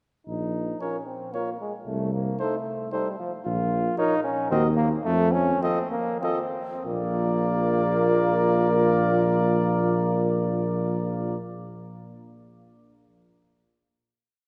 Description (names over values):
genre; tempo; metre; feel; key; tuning
classical, brass quintet; 93-115 BPM; 3/4; rubato; unclear; A4 = 440 Hz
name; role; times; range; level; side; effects
clear trombone; accompaniment; 0.3-11.4 s; F3 to F4; -31 LUFS; equal; none
mellow tuba; bass; 0.3-11.4 s; Bb1 to F2; -29 LUFS; equal; none
mellow trumpet; melody; 0.8-11.4 s; C5 to Eb5; -33 LUFS; equal; none
mellow flugelhorn; second line; 0.8-11.4 s; A4 to Bb4; -33 LUFS; equal; none
warm French horn; accompaniment; 0.8-11.4 s; Eb4 to Gb4; -33 LUFS; equal; none
room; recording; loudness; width
wet church reverb, RT60 4.1 s; none; -25 LUFS; mono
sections
0.3-6.9 A section; 6.9-10.6 final chord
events
slowing down 2.7-6.9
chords
0.3 Bbm; 1.9 Adim/C; 3.5 Bbm; 4.5 Ebm; 5.1 F; 6.9 Bb